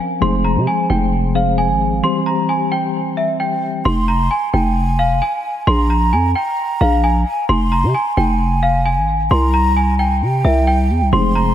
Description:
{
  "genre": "hip hop",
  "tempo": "132 BPM",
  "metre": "4/4",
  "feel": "half-time",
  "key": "F harmonic minor",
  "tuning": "A4 = 440 Hz",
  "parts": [
    { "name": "worn celesta", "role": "melody", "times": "0.0-11.5 s", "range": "E5 to C6", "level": "-19 LUFS", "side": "equal", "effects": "low-pass filter, diffuse ambient delay" },
    { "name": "mellow tine electric piano", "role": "accompaniment", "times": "0.0-3.9, 11.1-11.5 s", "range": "E3 to C5", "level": "-20 LUFS", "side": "left 2 dB", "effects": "medium stereo tremolo, low-pass filter" },
    { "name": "growling 808-style bass", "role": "bass", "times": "0.2-11.5 s", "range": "E1 to C3", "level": "-16 LUFS", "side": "equal", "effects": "none" },
    { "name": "mellow hollow concert flute", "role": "second line", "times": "3.9-11.5 s", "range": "G5 to C6", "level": "-23 LUFS", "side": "right 2 dB", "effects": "diffuse ambient delay" }
  ],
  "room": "moderate lush hall reverb, RT60 2.8 s",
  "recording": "dreamy mix soaked in reverb",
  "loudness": "-14 LUFS",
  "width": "side -11 dB against mid",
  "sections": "0.0-3.9 A section; 3.9-11.5 B section",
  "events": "break 2.0-3.9",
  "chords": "0.2 Fm; 2.0 C; 3.9 Fm; 5.7 Bb5; 7.5 Fm; 9.3 C5",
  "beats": "| 0.22 0.67 1.13 1.58 | 2.04 2.49 2.94 3.40 | 3.85 4.31 4.76 5.22 | 5.67 6.13 6.58 7.04 | 7.49 7.95 8.40 8.85 | 9.31 9.76 10.22 10.67 | 11.13"
}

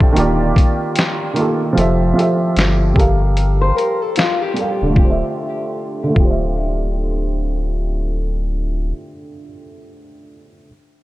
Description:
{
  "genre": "lo-fi hip hop",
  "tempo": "75 BPM",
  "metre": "4/4",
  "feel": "swing 63% on 16ths",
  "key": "D minor",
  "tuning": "A4 = 439 Hz",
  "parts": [
    { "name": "dark upright piano", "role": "accompaniment", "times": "0.0-10.7 s", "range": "D3 to C6", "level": "-19 LUFS", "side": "right 1 dB", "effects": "cassette tape, low-pass filter" },
    { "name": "lo-fi sampler-style drum kit", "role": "drums", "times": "0.0-6.4 s", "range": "hi-hat, kick drum, snare drum", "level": "-16 LUFS", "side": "equal", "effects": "none" },
    { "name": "saturated sub bass", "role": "bass", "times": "0.2-8.9 s", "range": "D1 to G1", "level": "-18 LUFS", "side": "equal", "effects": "none" },
    { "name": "nylon-string guitar", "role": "second line", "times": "3.6-4.9 s", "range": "F4 to C5", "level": "-21 LUFS", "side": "left 4 dB", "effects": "wide subtle chorus, low-pass filter, tape echo" }
  ],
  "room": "moderate plate reverb, RT60 2.5 s",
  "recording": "dreamy mix soaked in reverb, cassette tape",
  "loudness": "-15 LUFS",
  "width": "side -17 dB against mid",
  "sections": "0.0-5.0 A section; 5.0-8.2 B section",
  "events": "filter sweep on upright piano 0.0-5.0; break 3.4-5.0",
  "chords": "0.2 Ebmaj9; 1.8 Fmaj9; 3.0 Gm9; 5.0 Dm11",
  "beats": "0.16 0.96 | 1.76 2.56 3.36 4.16 | 4.96 5.76 6.56 7.36"
}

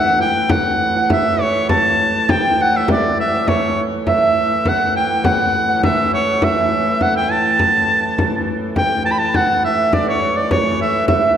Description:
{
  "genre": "medieval dance",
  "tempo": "102 BPM",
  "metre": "2/4",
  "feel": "straight",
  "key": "A mixolydian",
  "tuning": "A4 = 442 Hz",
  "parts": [
    { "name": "bright shawm", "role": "melody", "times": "0.0-11.4 s", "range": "C#5 to B5", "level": "-17 LUFS", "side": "equal", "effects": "none" },
    { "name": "concert harp", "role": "second line", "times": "0.0-11.4 s", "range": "C#5 to A5", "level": "-21 LUFS", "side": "right 4 dB", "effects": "none" },
    { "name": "warm hurdy-gurdy", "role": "drone", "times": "0.0-11.4 s", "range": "A2 to E3", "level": "-23 LUFS", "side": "equal", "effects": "none" },
    { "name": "frame drum", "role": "percussion", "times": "0.5-11.4 s", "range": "none", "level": "-21 LUFS", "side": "left 1 dB", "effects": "none" }
  ],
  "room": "wet concert hall reverb, RT60 2.0 s",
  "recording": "recorded in a church or concert hall",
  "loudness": "-14 LUFS",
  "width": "side -9 dB against mid",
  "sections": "0.0-8.8 A section; 8.8-11.4 B section",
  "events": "none",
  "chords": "none",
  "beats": "| 0.51 1.10 | 1.70 2.29 | 2.88 3.48 | 4.07 4.66 | 5.25 5.83 | 6.42 7.01 | 7.59 8.18 | 8.76 9.35 | 9.93 10.51 | 11.09"
}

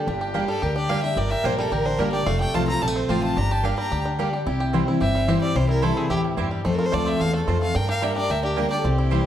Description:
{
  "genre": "bluegrass",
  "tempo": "219 BPM",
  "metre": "4/4",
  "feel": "straight",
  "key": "G dorian",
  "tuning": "A4 = 440 Hz",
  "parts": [
    { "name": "rich fiddle", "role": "second line", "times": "0.0-9.3 s", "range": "C4 to Bb4", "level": "-30 LUFS", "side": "left 2 dB", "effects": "none" },
    { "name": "picked steel-string acoustic guitar", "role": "accompaniment", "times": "0.0-9.3 s", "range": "E2 to G4", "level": "-25 LUFS", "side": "left 2 dB", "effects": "none" },
    { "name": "bluegrass banjo", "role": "arpeggios", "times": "0.0-9.3 s", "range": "G3 to G4", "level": "-30 LUFS", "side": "right 3 dB", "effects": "none" },
    { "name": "upright bass", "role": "bass", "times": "0.1-9.2 s", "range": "F1 to G2", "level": "-26 LUFS", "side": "equal", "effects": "none" },
    { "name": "mandolin", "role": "stabs", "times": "0.3-9.2 s", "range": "Bb3 to A5", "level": "-32 LUFS", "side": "right 7 dB", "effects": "none" },
    { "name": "rich fiddle", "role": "melody", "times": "0.5-8.8 s", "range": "G4 to Bb5", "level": "-27 LUFS", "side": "equal", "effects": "none" }
  ],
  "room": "moderate large studio reverb, RT60 1.4 s",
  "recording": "dark, warm production",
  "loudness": "-20 LUFS",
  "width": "side -10 dB against mid",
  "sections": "0.0-4.5 A section; 4.5-9.3 B section",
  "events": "none",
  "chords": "0.0 Gm; 2.3 F; 3.4 Gm; 4.5 C; 6.7 F; 7.7 Gm",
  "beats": "| 0.07 0.35 0.62 0.90 | 1.17 1.45 1.72 2.00 | 2.27 2.54 2.82 3.09 | 3.37 3.64 3.92 4.19 | 4.46 4.74 5.01 5.28 | 5.56 5.83 6.11 6.38 | 6.65 6.93 7.20 7.47 | 7.75 8.02 8.29 8.57 | 8.84 9.12"
}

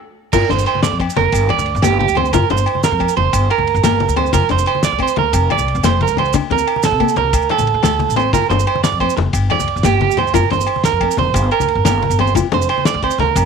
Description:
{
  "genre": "highlife guitar band",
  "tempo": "120 BPM (dotted quarters)",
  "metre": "12/8",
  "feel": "straight",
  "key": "G minor",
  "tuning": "A4 = 437 Hz",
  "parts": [
    { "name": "nylon-string guitar", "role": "accompaniment", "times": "0.3-13.2 s", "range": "A3 to F4", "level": "-22 LUFS", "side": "left 14 dB", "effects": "none" },
    { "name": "electric guitar at the edge of break-up", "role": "arpeggios", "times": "0.3-13.5 s", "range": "G4 to D5", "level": "-16 LUFS", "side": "right 14 dB", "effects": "vibrato effect, slapback echo" },
    { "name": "upright bass", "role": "bass", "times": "0.3-13.5 s", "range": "F1 to C3", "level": "-19 LUFS", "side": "left 1 dB", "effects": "none" },
    { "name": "cloth-damped thuddy drum kit", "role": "drums", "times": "0.3-13.4 s", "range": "crash cymbal, kick drum, ride cymbal, snare drum", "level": "-24 LUFS", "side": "left 1 dB", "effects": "none" },
    { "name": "agogo bells", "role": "percussion", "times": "0.3-13.5 s", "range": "none", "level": "-26 LUFS", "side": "left 15 dB", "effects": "none" },
    { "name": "congas", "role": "percussion", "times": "0.3-13.3 s", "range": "none", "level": "-23 LUFS", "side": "left 10 dB", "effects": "none" },
    { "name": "maracas", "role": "percussion", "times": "0.3-13.4 s", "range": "none", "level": "-28 LUFS", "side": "right 11 dB", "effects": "none" }
  ],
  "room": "small room ambience",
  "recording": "1960s-style stereo with parts hard left and right",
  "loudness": "-13 LUFS",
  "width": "side -6 dB against mid",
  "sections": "0.3-13.5 A section",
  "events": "band accent 0.0-0.3",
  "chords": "0.3 Gm7; 4.3 Fsus4; 6.3 D5; 8.3 Gm7; 12.4 Fsus4",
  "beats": "| 0.33 0.83 1.33 1.83 | 2.33 2.83 3.33 3.83 | 4.33 4.83 5.33 5.83 | 6.33 6.83 7.33 7.84 | 8.34 8.84 9.34 9.84 | 10.34 10.85 11.35 11.85 | 12.35 12.86 13.36"
}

